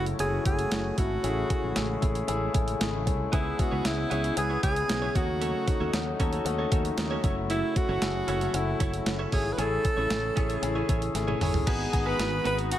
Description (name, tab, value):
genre	1980s-style pop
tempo	115 BPM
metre	4/4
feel	straight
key	unclear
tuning	A4 = 440 Hz
part	clear alto saxophone	melody	0.0-12.8 s	E4 to B4	-31 LUFS	right 1 dB	ping-pong delay
part	clear concert grand piano	accompaniment	0.0-12.8 s	A3 to A4	-32 LUFS	left 4 dB	none
part	chorused pulse-width pad	sustained chords	0.0-12.8 s	C#3 to F#4	-37 LUFS	right 1 dB	none
part	fretless electric bass	bass	0.0-12.7 s	F#1 to D#2	-32 LUFS	equal	none
part	clean 12-bit digital drum machine	drums	0.1-12.8 s	crash cymbal, hi-hat, kick drum, snare drum, toms	-29 LUFS	equal	none
part	direct-recorded clean electric guitar	riff	3.3-12.8 s	B3 to C#5	-36 LUFS	right 4 dB	lush chorus
part	warm studio violin section	second line	11.7-12.8 s	F#5 to B5	-39 LUFS	right 2 dB	ping-pong delay
room	light reverb, digital ambience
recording	none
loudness	-25 LUFS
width	side -12 dB against mid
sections	0.0-11.7 A section; 11.7-12.8 B section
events	drum fill 11.2-11.7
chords	0.0 F#m7; 1.2 Amaj7; 3.3 C#m7; 5.2 D#m7b5; 7.2 F#m7; 9.6 Amaj7; 11.7 G#m7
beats	0.19 0.72 | 1.24 1.76 2.28 2.80 | 3.32 3.85 4.37 4.89 | 5.41 5.93 6.46 6.98 | 7.50 8.02 8.54 9.06 | 9.59 10.11 10.63 11.15 | 11.67 12.19 12.72